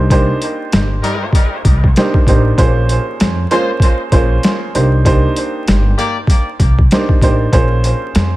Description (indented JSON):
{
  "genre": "hip hop, boom-bap hip-hop",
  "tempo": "97 BPM",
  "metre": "4/4",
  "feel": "swing 58% on 16ths",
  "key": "unclear",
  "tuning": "A4 = 440 Hz",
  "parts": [
    { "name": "dark upright piano", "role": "accompaniment", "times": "0.0-8.4 s", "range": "Bb3 to C5", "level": "-17 LUFS", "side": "right 2 dB", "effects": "high-pass filter, low-pass filter, dub echo" },
    { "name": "upright bass", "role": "bass", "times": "0.0-8.4 s", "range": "G1 to F2", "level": "-14 LUFS", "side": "equal", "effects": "none" },
    { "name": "boom bap sampler-style drum kit", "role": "drums", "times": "0.1-8.3 s", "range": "hi-hat, kick drum, snare drum", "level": "-13 LUFS", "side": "equal", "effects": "overdrive" },
    { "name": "warm horn section", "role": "stabs", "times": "1.0-6.2 s", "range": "G3 to D5", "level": "-24 LUFS", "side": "left 2 dB", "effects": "high-pass filter, low-pass filter, dub echo" }
  ],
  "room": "little or no reverb",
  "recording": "echo-heavy mix, vinyl crackle",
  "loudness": "-11 LUFS",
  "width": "side -17 dB against mid",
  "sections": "0.0-8.4 A section",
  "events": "none",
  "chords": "0.0 Cm9; 2.6 Bbm9; 4.7 Cm9; 7.5 Bbm9",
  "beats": "| 0.11 0.72 1.34 1.96 | 2.58 3.20 3.82 4.44 | 5.05 5.67 6.29 6.91 | 7.53 8.15"
}